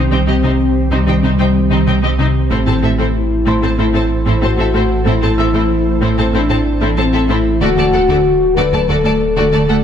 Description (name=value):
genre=cinematic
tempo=94 BPM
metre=4/4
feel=straight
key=unclear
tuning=A4 = 440 Hz
part: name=rich symphonic violin section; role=second line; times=0.0-9.8 s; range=Eb4 to A5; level=-23 LUFS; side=left 3 dB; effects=none
part: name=dark French horn section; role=sustained chords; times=0.0-9.8 s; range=G3 to B4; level=-17 LUFS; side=left 3 dB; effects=none
part: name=ethereal airy pad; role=sustained chords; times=0.0-9.8 s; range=D3 to D5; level=-22 LUFS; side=right 1 dB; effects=ensemble chorus, built-in reverb
part: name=thumb-piano-like synth pluck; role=arpeggios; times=0.0-9.8 s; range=C3 to E4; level=-20 LUFS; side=left 2 dB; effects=chorus, tape echo
part: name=pure sine sub bass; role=bass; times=0.0-9.8 s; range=D1 to C2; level=-18 LUFS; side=right 1 dB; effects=none
part: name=rich symphonic cello section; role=bass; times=0.0-9.8 s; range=D2 to C3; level=-21 LUFS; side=right 3 dB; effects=none
part: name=felt-muted upright piano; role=texture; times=0.0-7.6 s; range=C5 to E6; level=-30 LUFS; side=left 2 dB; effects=none
part: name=clear symphonic viola section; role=accompaniment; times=0.1-9.8 s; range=A3 to A4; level=-22 LUFS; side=right 1 dB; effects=none
room=moderate recital hall reverb, RT60 1.4 s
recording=none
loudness=-12 LUFS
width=side -8 dB against mid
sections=0.0-9.8 A section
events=none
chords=0.0 Cm; 2.5 Am; 7.6 D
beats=0.59 1.23 1.87 | 2.51 3.15 3.79 4.42 | 5.06 5.70 6.34 6.98 | 7.62 8.25 8.89 9.53